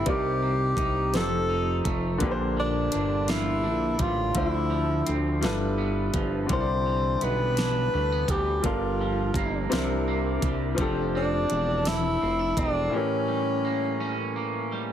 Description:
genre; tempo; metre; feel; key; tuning
slow six-eight R&B; 56 BPM (dotted quarters); 6/8; straight; unclear; A4 = 441 Hz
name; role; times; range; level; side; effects
breathy tenor saxophone; melody; 0.0-14.4 s; C#4 to C5; -27 LUFS; left 1 dB; slapback echo
electric guitar at the edge of break-up; second line; 0.0-14.9 s; G2 to A4; -33 LUFS; right 6 dB; wide subtle chorus
bright baby grand piano; accompaniment; 0.0-14.9 s; A2 to D5; -30 LUFS; left 3 dB; none
fat analog bass; bass; 0.0-12.9 s; E1 to D2; -29 LUFS; equal; none
smooth R&B drum kit; drums; 0.1-12.7 s; hi-hat, kick drum, snare drum; -30 LUFS; equal; none
room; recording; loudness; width
light reverb; heavily compressed radio sound; -23 LUFS; side -10 dB against mid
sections
0.0-14.9 A section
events
break 12.9-14.9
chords
0.1 Cm7; 1.1 F9; 2.2 Bb6; 4.4 Dm9; 5.4 G13; 6.5 Cmaj9; 8.6 Gm7; 9.7 C7; 10.8 F6; 12.9 A7b9

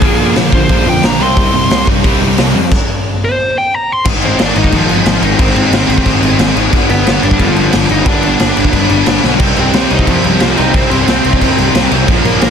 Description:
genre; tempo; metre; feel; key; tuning
punk rock; 179 BPM; 4/4; straight; C minor; A4 = 440 Hz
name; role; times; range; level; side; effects
smooth overdriven lead guitar; melody; 0.0-12.5 s; F3 to C6; -16 LUFS; equal; tape echo
distorted electric guitar; riff; 0.0-2.7, 9.4-12.5 s; Bb2 to Eb4; -18 LUFS; right 14 dB; distortion
high-gain distorted guitar; riff; 0.0-12.5 s; G2 to Eb4; -18 LUFS; equal; distortion
tight distorted guitar; riff; 0.0-12.5 s; G2 to C4; -17 LUFS; left 14 dB; distortion
fuzz picked electric bass; bass; 0.0-12.5 s; G1 to G2; -17 LUFS; equal; overdrive
raw garage drum kit; drums; 0.0-12.5 s; crash cymbal, hi-hat, kick drum, snare drum; -13 LUFS; equal; none
room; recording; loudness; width
little or no reverb; dense, heavily limited modern master; -9 LUFS; side -7 dB against mid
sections
0.0-4.1 A section; 4.1-12.5 B section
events
lead electric guitar solo 0.0-4.1; stop 2.7-4.1; drum fill 9.2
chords
0.0 Bb; 1.2 Cm; 2.7 N.C.; 4.1 Ab; 6.7 G; 9.4 Cm

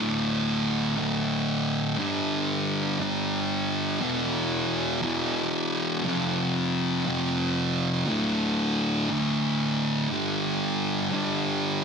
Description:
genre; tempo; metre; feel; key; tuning
rock; 118 BPM; 4/4; straight; D dorian; A4 = 442 Hz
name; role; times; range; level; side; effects
thick fuzz guitar; solo; 0.0-11.8 s; D2 to G3; -24 LUFS; equal; distortion, slapback echo
room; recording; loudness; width
moderate large studio reverb, RT60 1.1 s, digital ambience; dense, heavily limited modern master; -24 LUFS; side -6 dB against mid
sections
0.0-11.8 A section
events
none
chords
0.0 D5; 2.0 G5; 4.0 E5; 6.0 F5; 8.1 D5; 10.1 G5

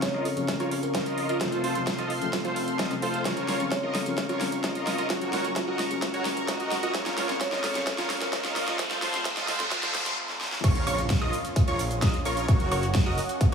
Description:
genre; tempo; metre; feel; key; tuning
EDM, festival progressive house; 130 BPM; 4/4; straight; Bb harmonic minor; A4 = 440 Hz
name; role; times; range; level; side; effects
kalimba; melody; 0.0-9.9 s; F4 to Db5; -34 LUFS; right 1 dB; dub echo
felt-muted upright piano; accompaniment; 0.0-10.7 s; C3 to Db4; -34 LUFS; left 4 dB; sidechain pumping
lush unison pad; sustained chords; 0.0-13.5 s; Bb3 to Db6; -35 LUFS; right 1 dB; chorus, sidechain pumping
detuned saw bass; bass; 0.0-13.5 s; F1 to F2; -37 LUFS; equal; none
big-room dance drum kit; drums; 0.0-13.5 s; crash cymbal, hi-hat, shaker, snare drum; -32 LUFS; right 1 dB; none
electronic kick drum; drums; 0.0-13.5 s; none; -25 LUFS; equal; high-pass filter on kick, high-pass filter on room
dense compressed supersaw; riff; 0.1-13.5 s; F4 to Eb5; -32 LUFS; right 2 dB; sidechain pumping, low-pass filter, dub echo
riser, noise sweep and impact; sound effects; 5.6-12.5 s; none; -35 LUFS; equal; none
wide unison pluck; arpeggios; 10.6-13.5 s; Db6 to Eb6; -33 LUFS; equal; sidechain pumping, dub echo
room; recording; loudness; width
light reverb; high-pass filter, studio reverb; -24 LUFS; side -6 dB against mid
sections
0.0-10.6 A section; 10.6-13.5 B section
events
build-up 0.0-10.6; drum fill 0.0-10.2, 10.3-10.6; filter sweep 0.0-10.6; riser 5.6-10.2; noise sweep 8.8-10.6; stop 10.2-10.6; drop 10.6-13.5; impact 10.6-12.5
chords
0.0 Bbm; 1.4 F; 3.3 Bbm; 5.1 Gb; 6.9 Bbm; 8.8 F; 10.6 Bbm; 12.5 Gb

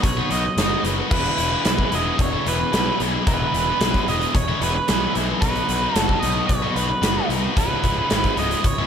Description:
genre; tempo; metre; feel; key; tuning
classic rock; 112 BPM; 4/4; straight; unclear; A4 = 439 Hz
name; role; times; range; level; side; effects
octave-fuzz lead guitar; melody; 0.0-8.9 s; B4 to D#5; -24 LUFS; right 2 dB; distortion, slapback echo
tight distorted guitar; riff; 0.0-8.9 s; C#2 to B4; -24 LUFS; left 2 dB; distortion, slapback echo
fuzz picked electric bass; bass; 0.0-8.8 s; C#1 to B#1; -25 LUFS; equal; overdrive
big rock drum kit; drums; 0.0-8.8 s; crash cymbal, hi-hat, kick drum, snare drum; -23 LUFS; equal; none
room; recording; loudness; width
moderate lush hall reverb, RT60 1.8 s, small room ambience; big arena sound; -18 LUFS; side -8 dB against mid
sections
0.0-8.9 A section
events
none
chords
0.0 B; 1.1 E; 5.4 B; 7.6 C#m7

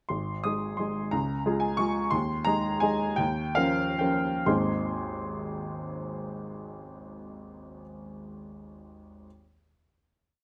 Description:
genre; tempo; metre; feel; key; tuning
classical, piano waltz; 122-187 BPM; 3/4; rubato; Ab major; A4 = 438 Hz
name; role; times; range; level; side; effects
clear upright piano; solo; 0.1-9.3 s; Ab1 to Eb6; -30 LUFS; equal; none
room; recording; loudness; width
light reverb; close, detailed microphones; -29 LUFS; mono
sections
0.1-4.5 A section; 4.5-7.1 final chord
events
slowing down 1.6-4.5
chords
0.1 Ab; 1.1 Db; 2.1 Ab/Eb; 3.2 Eb9; 4.5 Ab

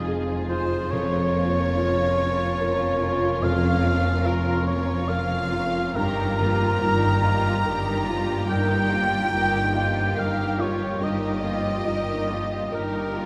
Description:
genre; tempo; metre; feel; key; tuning
cinematic; 71 BPM; 3/4; rubato; unclear; A4 = 440 Hz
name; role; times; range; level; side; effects
rich symphonic violin section; melody; 0.0-13.3 s; Bb4 to Bb5; -33 LUFS; equal; none
mellow cor anglais; second line; 0.0-13.3 s; Bb4 to G5; -29 LUFS; equal; none
warm symphonic violin section; second line; 0.0-13.3 s; F4 to Bb4; -36 LUFS; equal; none
felt-muted upright piano; accompaniment; 0.0-13.3 s; F2 to Eb5; -30 LUFS; equal; none
warm symphonic viola section; accompaniment; 0.0-13.3 s; Eb3 to G4; -34 LUFS; equal; none
concert harp; arpeggios; 0.0-13.3 s; G2 to Eb5; -37 LUFS; equal; none
rich symphonic cello section; bass; 0.0-13.3 s; F2 to G2; -33 LUFS; equal; none
rich symphonic double bass section; bass; 0.0-13.3 s; F1 to G1; -32 LUFS; equal; none
room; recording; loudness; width
wet cathedral reverb, RT60 5.9 s; recorded in a church or concert hall; -23 LUFS; mono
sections
0.0-13.3 A section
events
none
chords
0.0 Fm7; 0.9 Bbm/F; 6.0 Ebadd9/G

